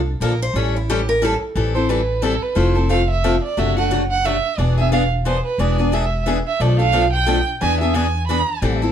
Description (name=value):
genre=acoustic string swing (jazz manouche)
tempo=178 BPM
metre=3/4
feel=swing 59% on 8ths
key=unclear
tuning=A4 = 441 Hz
part: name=upright bass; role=bass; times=0.0-8.9 s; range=E1 to E2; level=-20 LUFS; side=equal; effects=none
part: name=picked steel-string acoustic guitar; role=melody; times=0.2-1.4 s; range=E4 to C#5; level=-23 LUFS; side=right 1 dB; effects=none
part: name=picked steel-string acoustic guitar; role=accompaniment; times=0.2-8.9 s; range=B2 to A4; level=-21 LUFS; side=left 4 dB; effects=none
part: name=warm violin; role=second line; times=1.7-8.6 s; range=A4 to B5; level=-21 LUFS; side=right 6 dB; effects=none
room=light reverb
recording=none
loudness=-16 LUFS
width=side -9 dB against mid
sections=0.0-1.6 A section; 1.6-8.9 A section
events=steel-string acoustic guitar solo 0.0-1.6; violin solo 1.6-8.9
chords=0.0 Bbmaj7; 0.5 A7; 1.6 Am7; 2.6 Fmaj7; 3.6 D7/F#; 4.6 E7; 6.6 Bm7b5; 7.6 E7